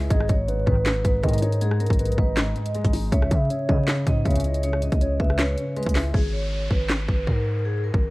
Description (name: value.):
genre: hip hop, trap.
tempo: 159 BPM.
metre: 4/4.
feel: half-time.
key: unclear.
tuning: A4 = 441 Hz.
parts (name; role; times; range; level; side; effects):
dark grand piano; accompaniment; 0.0-6.2 s; G#2 to E4; -28 LUFS; left 1 dB; none.
distorted 808-style bass; bass; 0.0-8.1 s; G#1 to C#3; -25 LUFS; equal; distortion.
vibraphone with medium mallets; melody; 0.1-8.1 s; G#4 to E5; -30 LUFS; equal; analog delay.
hollow clarinet-like synth lead; second line; 0.1-5.7 s; B4 to E5; -31 LUFS; right 1 dB; chorus, analog delay.
trap drum kit; drums; 0.1-8.0 s; handclaps, hi-hat, kick drum, rim click, snare drum; -23 LUFS; equal; overdrive.
mellow synth brass; stabs; 0.7-1.4, 3.7-4.4 s; G#1 to D#3; -28 LUFS; equal; chorus, phaser.
downlifter; sound effects; 6.1-8.1 s; none; -37 LUFS; equal; none.
room: little or no reverb.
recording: dark, warm production, vinyl crackle.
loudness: -20 LUFS.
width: side -20 dB against mid.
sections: 0.0-6.1 A section; 6.1-8.1 B section.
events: hi-hats muted 6.1-8.1.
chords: 0.1 G#m; 3.1 C#m; 6.1 N.C..